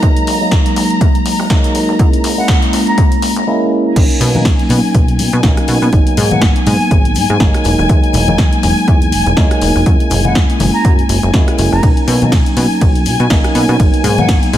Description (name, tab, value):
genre	filtered disco house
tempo	122 BPM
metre	4/4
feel	swing 57% on 16ths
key	B major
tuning	A4 = 440 Hz
part	mellow tine electric piano	accompaniment	0.0-14.6 s	F#3 to E4	-16 LUFS	equal	phaser, sidechain pumping, low-pass filter
part	rich studio violin section	sustained chords	0.0-14.6 s	G#5 to A#5	-21 LUFS	left 2 dB	sidechain pumping, low-pass filter
part	plucky analog bass	bass	0.0-14.6 s	E1 to B2	-16 LUFS	equal	tube saturation, sidechain pumping, high-pass filter, low-pass filter
part	electronic kick drum	drums	0.0-14.4 s	none	-12 LUFS	equal	none
part	punchy analog drum machine	drums	0.0-14.6 s	crash cymbal, hi-hat, ride cymbal, rim click, snare drum	-20 LUFS	left 1 dB	high-pass filter on hats, high-pass filter on snare, high-pass filter on cymbals
part	concert flute	melody	2.4-3.1, 6.3-7.1, 10.2-14.6 s	F#5 to A#5	-22 LUFS	equal	sidechain pumping, low-pass filter, ping-pong delay
part	maracas and congas	percussion	4.0-14.6 s	none	-22 LUFS	left 2 dB	none
room	light reverb, studio reverb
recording	none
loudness	-10 LUFS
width	side -12 dB against mid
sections	0.0-4.0 A section; 4.0-14.6 B section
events	build-up 0.0-4.0; filter sweep on flute 0.0-4.0; filter sweep 0.0-4.0; drop 4.0-14.6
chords	0.0 Emaj9#11; 2.0 F#9; 4.0 Bmaj9; 5.9 G#m7; 7.7 Emaj9#11; 9.9 F#9; 11.8 Bmaj9; 13.8 G#m7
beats	| 0.03 0.52 1.01 1.50 | 2.00 2.49 2.98 3.47 | 3.96 4.45 4.95 5.44 | 5.93 6.42 6.91 7.41 | 7.90 8.39 8.88 9.37 | 9.86 10.36 10.85 11.34 | 11.83 12.32 12.81 13.31 | 13.80 14.29